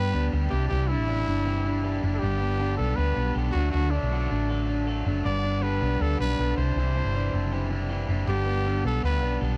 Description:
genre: indie pop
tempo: 158 BPM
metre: 4/4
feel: straight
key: G major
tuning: A4 = 436 Hz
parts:
  - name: growling trumpet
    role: melody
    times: 0.0-9.4 s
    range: D4 to D5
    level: -33 LUFS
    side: equal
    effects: none
  - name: overdriven electric guitar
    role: accompaniment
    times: 0.0-9.6 s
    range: G2 to G4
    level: -36 LUFS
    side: equal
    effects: none
  - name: electric guitar through a small old amp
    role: arpeggios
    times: 0.0-9.6 s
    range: G2 to B4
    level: -34 LUFS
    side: equal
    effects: none
  - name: woody fretless electric bass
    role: bass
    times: 0.0-9.6 s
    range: F#1 to G2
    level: -28 LUFS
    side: equal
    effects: analog chorus
room: little or no reverb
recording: dry, close 1970s-style studio recording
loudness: -26 LUFS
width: mono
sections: 0.0-9.6 A section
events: none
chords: 0.0 G; 0.5 Cadd9; 2.2 G; 3.5 D; 5.2 G; 6.6 Cadd9; 8.3 G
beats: 0.33 | 0.70 1.08 1.46 1.84 | 2.22 2.60 2.97 3.35 | 3.73 4.11 4.49 4.87 | 5.25 5.63 6.00 6.38 | 6.76 7.14 7.52 7.90 | 8.28 8.66 9.04 9.42

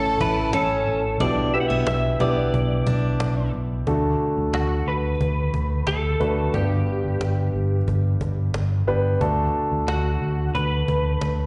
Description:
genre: piano-driven pop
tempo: 90 BPM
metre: 4/4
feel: straight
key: D major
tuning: A4 = 440 Hz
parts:
  - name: twelve-string electric guitar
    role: melody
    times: 0.0-11.5 s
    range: F#4 to F#5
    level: -30 LUFS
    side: equal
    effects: ensemble chorus, slapback echo
  - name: warm studio violin section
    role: second line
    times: 0.0-0.8 s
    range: A4 to A5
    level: -31 LUFS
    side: equal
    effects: slapback echo
  - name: warm concert grand piano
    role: accompaniment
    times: 0.0-11.5 s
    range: G2 to B4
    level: -28 LUFS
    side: equal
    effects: slapback echo
  - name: vintage muted fingered electric bass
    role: bass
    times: 0.0-11.5 s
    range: G1 to D2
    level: -26 LUFS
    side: equal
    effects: none
  - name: picked steel-string acoustic guitar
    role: riff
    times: 0.2-3.3 s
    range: B3 to E4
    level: -31 LUFS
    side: equal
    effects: slapback echo
  - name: cajon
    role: drums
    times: 0.2-11.4 s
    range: none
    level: -32 LUFS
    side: equal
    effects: none
room: light reverb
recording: live gig heard through the venue's PA, recital hall reverb, nothing above 10.5 kHz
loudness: -23 LUFS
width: mono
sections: 0.0-3.9 A section; 3.9-11.5 B section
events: none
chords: 0.0 A; 1.2 G6/B; 3.9 D; 6.5 G; 9.2 D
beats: 0.54 | 1.20 1.87 2.54 3.21 | 3.87 4.54 5.21 5.87 | 6.54 7.21 7.88 8.54 | 9.21 9.88 10.55 11.22

